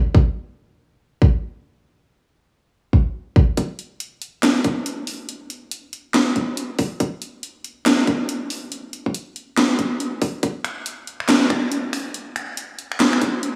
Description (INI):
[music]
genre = dubstep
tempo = 140 BPM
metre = 4/4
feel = swing 61% on 16ths, half-time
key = none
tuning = none
[part]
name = electronic kick drum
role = drums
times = 0.1-13.3 s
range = none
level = -19 LUFS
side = equal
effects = high-pass filter on kick, studio reverb
[part]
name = garage drum kit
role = drums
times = 3.6-13.5 s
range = finger snaps, handclaps, hi-hat, snare drum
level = -23 LUFS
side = equal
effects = studio reverb
[sound]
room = wet lush hall reverb, RT60 2.1 s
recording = dreamy mix soaked in reverb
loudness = -21 LUFS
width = mono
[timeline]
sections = 0.0-3.6 A section; 3.6-13.6 B section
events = build-up 3.6-13.6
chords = none